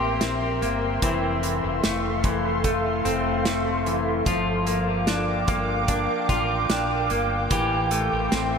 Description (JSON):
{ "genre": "dream pop", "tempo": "74 BPM", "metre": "4/4", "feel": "straight", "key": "G dorian", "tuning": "A4 = 442 Hz", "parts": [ { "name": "ethereal airy pad", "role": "sustained chords", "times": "0.0-8.6 s", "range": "A4 to D6", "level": "-26 LUFS", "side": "right 2 dB", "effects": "ensemble chorus, built-in reverb" }, { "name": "clean electric guitar", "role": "arpeggios", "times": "0.0-8.6 s", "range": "E3 to G4", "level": "-26 LUFS", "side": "left 2 dB", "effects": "wide subtle chorus, ping-pong delay" }, { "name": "mellow fretless electric bass", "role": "bass", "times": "0.0-8.6 s", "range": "F1 to Bb1", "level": "-30 LUFS", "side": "equal", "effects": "wide subtle chorus" }, { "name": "loose indie drum kit", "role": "drums", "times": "0.2-8.5 s", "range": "hi-hat, kick drum, snare drum", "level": "-28 LUFS", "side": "right 1 dB", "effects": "none" } ], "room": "wet lush hall reverb, RT60 2.6 s", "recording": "bright 1980s-style digital production", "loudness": "-21 LUFS", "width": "side -6 dB against mid", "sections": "0.0-8.6 A section", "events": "none", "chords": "0.0 C7; 1.0 Fmaj7; 4.3 Gm7; 7.5 Am7", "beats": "0.21 | 1.02 1.84 2.65 3.46 | 4.27 5.08 5.89 6.70 | 7.51 8.32" }